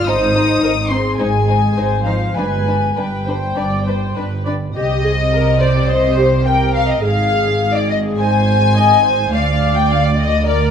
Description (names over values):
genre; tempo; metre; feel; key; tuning
quick classical-period movement for string orchestra; 103 BPM; 4/4; uneven beats, rubato; C minor; A4 = 441 Hz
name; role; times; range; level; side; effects
warm studio violin section; melody; 0.0-10.7 s; C5 to Eb6; -20 LUFS; left 5 dB; none
warm studio viola section; accompaniment; 0.0-10.7 s; G4 to Eb5; -21 LUFS; right 2 dB; none
warm chamber cello section; bass; 0.0-10.7 s; D2 to Eb4; -20 LUFS; right 1 dB; none
warm studio violin section; second line; 0.1-10.7 s; D4 to Ab5; -21 LUFS; left 4 dB; none
rich studio double bass section; bass; 0.1-10.7 s; G1 to D2; -19 LUFS; right 2 dB; none
room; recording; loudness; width
moderate recital hall reverb, RT60 1.7 s; dark, warm production; -13 LUFS; side -7 dB against mid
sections
0.0-4.8 A section; 4.8-10.7 B section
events
none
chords
0.1 Ab; 2.4 G; 4.8 Cm; 7.0 Ab; 9.3 Dm